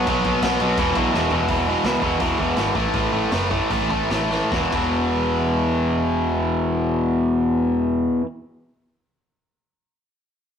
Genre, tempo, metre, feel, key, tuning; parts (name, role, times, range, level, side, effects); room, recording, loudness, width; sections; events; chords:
punk rock; 143-170 BPM; 4/4; straight; A4 = 437 Hz
biting overdriven guitar; riff; 0.0-8.3 s; E2 to B3; -19 LUFS; equal
modern bright picked electric bass; bass; 0.0-8.1 s; E1 to C#2; -28 LUFS; equal
raw garage drum kit; drums; 0.1-4.8 s; crash cymbal, hi-hat, kick drum, snare drum, toms; -28 LUFS; right 1 dB
light reverb; rough rehearsal-room recording, warm saturation; -18 LUFS; side -8 dB against mid
0.0-1.5 A section; 1.5-4.5 B section; 4.5-7.9 C section
drum fill 1.1-1.5, 4.3; slowing down 1.5-4.5
0.0 B5; 0.8 E5; 2.8 A5; 4.5 E5